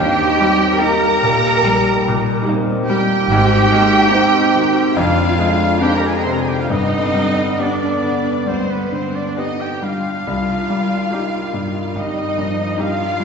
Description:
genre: classical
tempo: 65-74 BPM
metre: 4/4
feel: rubato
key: C minor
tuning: A4 = 437 Hz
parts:
  - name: clear baby grand piano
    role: melody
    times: 0.0-13.2 s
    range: C2 to G4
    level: -20 LUFS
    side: left 2 dB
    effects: none
  - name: rich studio violin section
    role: melody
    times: 0.0-13.2 s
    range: B4 to C6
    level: -25 LUFS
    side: left 2 dB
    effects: none
  - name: clear oboe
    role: second line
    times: 0.0-13.2 s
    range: B4 to C6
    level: -26 LUFS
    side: right 1 dB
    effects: none
  - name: dark clarinet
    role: second line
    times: 0.0-13.2 s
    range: G3 to Ab4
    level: -25 LUFS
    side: right 3 dB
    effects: none
  - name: mellow hollow silver concert flute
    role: second line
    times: 0.0-13.2 s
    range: B4 to C6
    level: -25 LUFS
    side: equal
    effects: none
  - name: rich studio violin section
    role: second line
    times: 0.0-13.2 s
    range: B4 to C6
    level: -30 LUFS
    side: left 1 dB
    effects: none
  - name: clear French horn section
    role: sustained chords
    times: 0.0-13.2 s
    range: Eb3 to D4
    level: -25 LUFS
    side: left 2 dB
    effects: none
  - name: dark trombone section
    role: sustained chords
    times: 0.0-13.2 s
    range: D3 to C4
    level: -28 LUFS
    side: right 2 dB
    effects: none
  - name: clear studio cello section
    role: bass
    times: 0.0-13.2 s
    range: B3 to C5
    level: -21 LUFS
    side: right 3 dB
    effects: none
  - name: rich studio double bass section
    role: bass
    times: 0.0-12.6 s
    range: F1 to Eb2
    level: -25 LUFS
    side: right 2 dB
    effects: none
  - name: rich symphonic viola section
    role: accompaniment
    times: 0.8-13.2 s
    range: G3 to Eb4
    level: -27 LUFS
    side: right 2 dB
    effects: none
  - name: timpani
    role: percussion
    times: 6.7-8.0 s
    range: none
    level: barely audible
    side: none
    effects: none
room: wet concert hall reverb, RT60 1.9 s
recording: recorded in a church or concert hall, nothing above 7.9 kHz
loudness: -14 LUFS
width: side -5 dB against mid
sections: 0.0-13.2 A section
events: none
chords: 0.0 Eb; 3.3 Ab; 5.0 Dm7b5/F; 6.7 G; 10.3 Cm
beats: 0.80 1.63 2.47 | 3.29 4.12 4.96 5.82 | 6.70 7.61 8.49 9.38 | 10.28 11.14 11.97 12.79

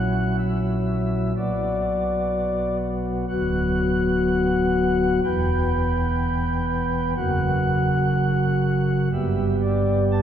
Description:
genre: classical, chorale-style piece for pipe organ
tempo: 62 BPM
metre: 4/4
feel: straight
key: B minor from 3.3 s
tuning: A4 = 440 Hz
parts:
  - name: pipe organ, flutes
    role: solo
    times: 0.0-10.2 s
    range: D1 to A5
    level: -20 LUFS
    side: equal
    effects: none
room: wet church reverb, RT60 3.1 s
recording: recorded in a church or concert hall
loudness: -20 LUFS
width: side -9 dB against mid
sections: 0.0-10.2 A section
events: none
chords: 0.0 F#7/A#; 1.4 Bm; 3.3 Bm/D; 5.2 Em; 7.2 F#; 9.1 G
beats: 0.40 1.37 2.33 | 3.29 4.26 5.24 6.21 | 7.18 8.15 9.13 10.12

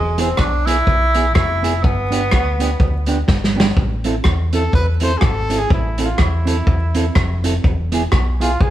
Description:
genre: ska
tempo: 124 BPM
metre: 4/4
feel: swing 58% on 8ths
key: A harmonic minor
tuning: A4 = 440 Hz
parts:
  - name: warm tenor saxophone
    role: melody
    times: 0.0-3.3 s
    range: G#3 to E4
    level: -19 LUFS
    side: right 1 dB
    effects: none
  - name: fingered electric bass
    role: bass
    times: 0.0-8.7 s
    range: E1 to E2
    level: -20 LUFS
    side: equal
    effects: none
  - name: mellow electric guitar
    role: accompaniment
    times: 0.2-8.5 s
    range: B3 to A4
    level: -24 LUFS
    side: right 3 dB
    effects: none
  - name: vintage drum kit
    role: drums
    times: 0.2-8.7 s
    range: hi-hat, kick drum, rim click, snare drum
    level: -18 LUFS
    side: equal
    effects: none
  - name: clear trumpet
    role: melody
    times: 4.5-8.7 s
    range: E4 to C5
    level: -23 LUFS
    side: equal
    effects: none
room: moderate stone room reverb, RT60 1.4 s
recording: band playing live in one room, vinyl crackle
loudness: -14 LUFS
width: side -13 dB against mid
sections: 0.0-3.8 A section; 3.8-8.7 B section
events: drum fill 3.3-3.8; trumpet solo 3.8-8.7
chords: 0.0 E; 1.8 G; 3.8 Am; 7.6 E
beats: 0.38 0.87 1.35 | 1.84 2.32 2.80 3.29 | 3.77 4.25 4.74 5.22 | 5.70 6.19 6.67 7.15 | 7.64 8.12 8.61

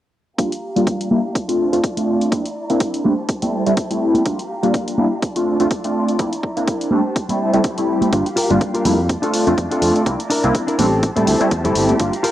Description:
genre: filtered disco house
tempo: 124 BPM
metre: 4/4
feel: swing 56% on 16ths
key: unclear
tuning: A4 = 438 Hz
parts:
  - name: funky polysynth comp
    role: accompaniment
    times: 0.4-12.1 s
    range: G3 to F4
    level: -18 LUFS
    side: equal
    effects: chorus, phaser, sidechain pumping, low-pass filter, cassette tape
  - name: warm studio violin section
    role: sustained chords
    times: 0.4-12.3 s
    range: E4 to Bb5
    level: -28 LUFS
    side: equal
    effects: vintage 12-bit sampler grit, sidechain pumping, low-pass filter, cassette tape
  - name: electronic hi-hat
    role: drums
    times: 0.4-12.3 s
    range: none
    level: -28 LUFS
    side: equal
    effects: sidechain pumping on hats, cassette tape
  - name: electronic kick drum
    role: drums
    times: 0.4-12.1 s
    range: none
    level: -22 LUFS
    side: equal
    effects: overdrive, high-pass filter on kick, cassette tape
  - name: egg shaker and congas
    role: percussion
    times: 0.4-12.2 s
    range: none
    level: -22 LUFS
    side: equal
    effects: sidechain pumping on perc, low-pass filter on perc
  - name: modern bright fingered electric bass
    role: bass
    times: 8.1-12.1 s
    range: G1 to A2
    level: -21 LUFS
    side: equal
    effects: sidechain pumping, low-pass filter
  - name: direct-recorded clean electric guitar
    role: riff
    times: 8.4-12.3 s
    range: C4 to Bb4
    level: -20 LUFS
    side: left 1 dB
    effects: vintage 12-bit sampler grit, sidechain pumping, low-pass filter, cassette tape
room: light reverb, digital ambience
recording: home recording on cassette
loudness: -16 LUFS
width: side -13 dB against mid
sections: 0.4-12.3 A section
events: filter sweep 0.4-12.3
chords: 0.4 Gm7; 1.4 F6; 2.3 C9; 3.0 Am7; 4.3 Gm7; 5.2 F6; 6.2 C9; 6.9 Am7; 8.1 Gm7; 9.1 F6; 10.1 C9; 10.8 Am7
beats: | 0.39 0.87 1.35 1.84 | 2.32 2.81 3.29 3.77 | 4.26 4.74 5.22 5.71 | 6.19 6.68 7.16 7.64 | 8.13 8.61 9.10 9.58 | 10.06 10.55 11.03 11.52 | 12.00

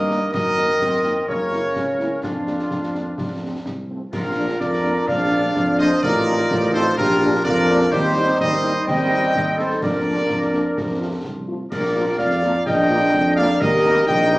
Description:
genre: military-style march for wind band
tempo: 126 BPM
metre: 2/4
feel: straight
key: Bb major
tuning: A4 = 440 Hz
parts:
  - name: clear trumpet section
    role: melody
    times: 0.0-14.4 s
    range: F4 to G5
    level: -23 LUFS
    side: equal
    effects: none
  - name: clear woodwind section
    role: second line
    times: 0.0-14.4 s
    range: D4 to Eb5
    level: -24 LUFS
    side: left 1 dB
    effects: none
  - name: warm euphonium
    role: second line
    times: 0.0-14.4 s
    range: F2 to G4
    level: -24 LUFS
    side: equal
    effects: none
  - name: warm trombone section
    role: sustained chords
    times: 0.0-14.4 s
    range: F3 to Eb4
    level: -29 LUFS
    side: equal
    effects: none
  - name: dark tuba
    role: bass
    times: 0.0-14.4 s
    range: A1 to G2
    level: -25 LUFS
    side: right 1 dB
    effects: none
  - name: mellow French horn section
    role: accompaniment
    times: 0.1-14.4 s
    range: F3 to F4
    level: -29 LUFS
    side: left 1 dB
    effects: none
  - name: concert snare drum, clash cymbals and concert bass drum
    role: drums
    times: 0.1-14.4 s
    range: none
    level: -29 LUFS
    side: equal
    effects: none
  - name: flute section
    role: second line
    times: 4.1-14.4 s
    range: F4 to Eb5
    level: -26 LUFS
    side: equal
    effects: none
room: wet large studio reverb, RT60 1.1 s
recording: heard from further back in the room, small speaker sound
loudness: -17 LUFS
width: side -20 dB against mid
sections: 0.0-4.1 A section; 4.1-14.4 B section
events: none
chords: 0.3 Ebm/Gb; 1.3 Gb7; 2.2 Bb/F; 3.2 F; 4.1 Bb; 6.0 F7/A; 7.0 Bb; 7.9 Cm/Eb; 9.8 Bb/F; 10.8 F; 11.7 Bb; 13.6 Eb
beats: | 0.34 0.81 | 1.28 1.76 | 2.23 2.71 | 3.18 3.66 | 4.13 4.61 | 5.08 5.56 | 6.03 6.50 | 6.98 7.45 | 7.93 8.40 | 8.88 9.35 | 9.82 10.30 | 10.77 11.25 | 11.72 12.19 | 12.67 13.14 | 13.62 14.09

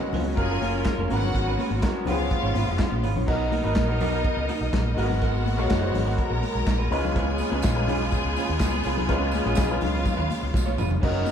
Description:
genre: disco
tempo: 124 BPM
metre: 4/4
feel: straight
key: unclear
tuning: A4 = 439 Hz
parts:
  - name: bright studio string section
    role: second line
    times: 0.0-11.3 s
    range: C#4 to A#5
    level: -32 LUFS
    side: left 1 dB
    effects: none
  - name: clear grand piano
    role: accompaniment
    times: 0.0-11.3 s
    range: E#3 to C#5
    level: -30 LUFS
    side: left 2 dB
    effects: none
  - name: electric guitar at the edge of break-up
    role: accompaniment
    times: 0.0-11.3 s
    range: B3 to C#5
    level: -33 LUFS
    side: right 6 dB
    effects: none
  - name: clear studio string section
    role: sustained chords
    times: 0.0-11.3 s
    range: C#3 to A#4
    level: -31 LUFS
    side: left 1 dB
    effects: none
  - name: overdriven fingered electric bass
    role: bass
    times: 0.1-11.2 s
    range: E#1 to D#2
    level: -27 LUFS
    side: equal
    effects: none
  - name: warm soul drum kit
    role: drums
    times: 0.1-11.3 s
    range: crash cymbal, handclaps, hi-hat, kick drum, snare drum, toms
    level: -27 LUFS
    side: equal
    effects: none
  - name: congas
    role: percussion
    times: 0.1-11.3 s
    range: none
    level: -34 LUFS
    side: left 5 dB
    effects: none
  - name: tambourine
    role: percussion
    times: 7.2-11.3 s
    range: none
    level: -43 LUFS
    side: right 6 dB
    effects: none
room: moderate large studio reverb, RT60 0.9 s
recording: band playing live in one room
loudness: -22 LUFS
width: side -8 dB against mid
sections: 0.0-3.3 A section; 3.3-11.0 B section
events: drum fill 10.5-11.0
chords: 0.4 F#maj7; 1.1 G#m11; 2.1 C#7; 3.3 Bmaj7; 5.0 G#m9; 6.9 C#7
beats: 0.37 0.85 | 1.34 1.82 2.31 2.79 | 3.28 3.76 4.25 4.73 | 5.22 5.70 6.19 6.67 | 7.16 7.64 8.13 8.61 | 9.10 9.58 10.06 10.55 | 11.03

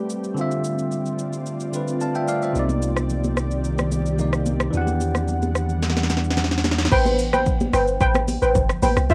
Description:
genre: amapiano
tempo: 110 BPM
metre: 4/4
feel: straight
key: A minor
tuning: A4 = 439 Hz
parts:
  - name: bell-like tine electric piano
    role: accompaniment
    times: 0.0-6.9 s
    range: C3 to A5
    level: -28 LUFS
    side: equal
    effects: cassette tape
  - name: ethereal airy pad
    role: sustained chords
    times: 0.0-6.9 s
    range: Eb3 to F#5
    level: -30 LUFS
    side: equal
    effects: ensemble chorus, built-in reverb, sidechain pumping, cassette tape
  - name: afro-pop drum kit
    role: drums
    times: 0.1-9.1 s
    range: crash cymbal, hi-hat, kick drum, rim click, shaker, snare drum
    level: -27 LUFS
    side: equal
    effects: none
  - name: punchy sub bass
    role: bass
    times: 2.6-6.9 s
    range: C2 to E2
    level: -27 LUFS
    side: equal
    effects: none
  - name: congas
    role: percussion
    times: 2.7-9.0 s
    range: none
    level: -32 LUFS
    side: equal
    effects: none
  - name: deep mellow chord stab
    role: stabs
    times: 6.9-9.1 s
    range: F4 to G5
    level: -22 LUFS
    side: equal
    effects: chorus, cassette tape, analog delay
  - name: deep log drum bass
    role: bass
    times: 6.9-9.1 s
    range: G1 to D2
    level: -26 LUFS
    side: equal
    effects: none
room: light reverb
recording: home recording on cassette, vinyl crackle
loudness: -22 LUFS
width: mono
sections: 0.0-6.9 A section; 6.9-9.1 B section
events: drum fill 5.8-6.9; drop 6.9-9.1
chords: 0.4 Dm9; 2.6 Cm9; 4.7 Em9; 6.9 Am9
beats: | 0.37 0.92 1.46 2.01 | 2.55 3.10 3.64 4.19 | 4.73 5.28 5.83 6.37 | 6.92 7.46 8.01 8.55 | 9.10

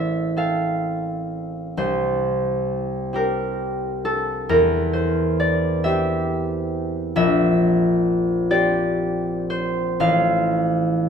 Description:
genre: classical, solo harp piece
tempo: 38-46 BPM (dotted quarters)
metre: 6/8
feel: rubato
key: unclear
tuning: A4 = 437 Hz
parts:
  - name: concert harp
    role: solo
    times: 0.0-11.1 s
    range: A1 to F5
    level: -19 LUFS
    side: equal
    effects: none
room: wet stone room reverb, RT60 1.4 s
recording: none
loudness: -19 LUFS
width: side -7 dB against mid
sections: 0.0-11.1 A section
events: none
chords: 0.0 F/A; 1.8 C5; 4.5 C/E; 7.2 C7/Bb; 10.0 F/A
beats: 0.39 | 1.79 3.15 | 4.50 5.83 | 7.16 8.52 | 10.02

